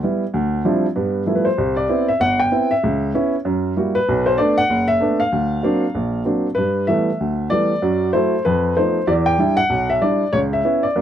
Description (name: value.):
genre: jazz.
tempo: 192 BPM.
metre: 4/4.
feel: swing 62% on 8ths.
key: G major.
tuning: A4 = 442 Hz.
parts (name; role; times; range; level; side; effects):
warm upright piano; solo; 0.0-11.0 s; F#1 to G5; -16 LUFS; equal; none.
room: light reverb.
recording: dry, close 1970s-style studio recording.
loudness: -16 LUFS.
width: side -10 dB against mid.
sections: 0.0-6.6 A section; 6.6-11.0 B section.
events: none.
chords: 0.3 Dm11; 1.0 G13; 1.6 Cmaj7; 2.8 C#m7; 3.4 F#7b9; 4.1 Bm7; 5.3 D7alt; 6.6 G69; 7.8 F#m7b5; 8.4 F7#11; 9.1 Em7; 10.3 C#m7.